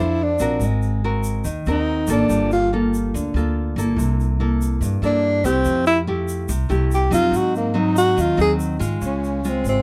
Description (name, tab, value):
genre	bossa nova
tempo	143 BPM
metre	4/4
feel	straight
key	unclear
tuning	A4 = 439 Hz
part	breathy tenor saxophone	melody	0.0-9.8 s	Bb3 to Ab4	-21 LUFS	equal	none
part	nylon-string guitar	accompaniment	0.0-9.8 s	G2 to C5	-25 LUFS	equal	none
part	upright bass	bass	0.0-9.8 s	G1 to Ab2	-25 LUFS	equal	none
part	tube shaker	percussion	0.4-9.8 s	none	-39 LUFS	equal	none
room	light reverb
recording	none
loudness	-20 LUFS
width	mono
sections	0.0-9.0 A section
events	tenor saxophone solo 0.0-9.0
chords	0.0 Bbmaj9; 0.6 Ab9; 2.3 Gm9; 4.0 C13; 5.7 Fmaj9; 7.3 Ab7; 9.0 Dbmaj7